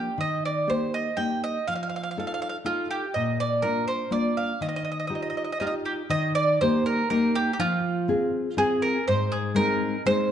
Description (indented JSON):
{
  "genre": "italian folk, Italian serenade",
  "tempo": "122 BPM",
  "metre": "3/4",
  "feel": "straight",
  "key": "Eb major",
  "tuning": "A4 = 440 Hz",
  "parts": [
    { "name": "bowl-back mandolin", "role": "melody", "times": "0.0-10.3 s", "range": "F4 to G5", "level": "-26 LUFS", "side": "right 3 dB", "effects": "none" },
    { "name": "nylon-string guitar", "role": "accompaniment", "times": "0.0-10.3 s", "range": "Ab2 to A4", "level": "-26 LUFS", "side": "left 2 dB", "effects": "none" }
  ],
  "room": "moderate recital hall reverb, RT60 1.4 s",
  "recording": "dark, warm production, nothing above 10.7 kHz",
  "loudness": "-23 LUFS",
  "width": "side -9 dB against mid",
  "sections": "0.0-6.1 A section; 6.1-10.3 A section",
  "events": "none",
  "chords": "0.2 Eb; 1.7 F7; 3.1 Bb; 4.6 Ebadd9; 6.1 Eb; 7.6 Fm; 9.1 Ab"
}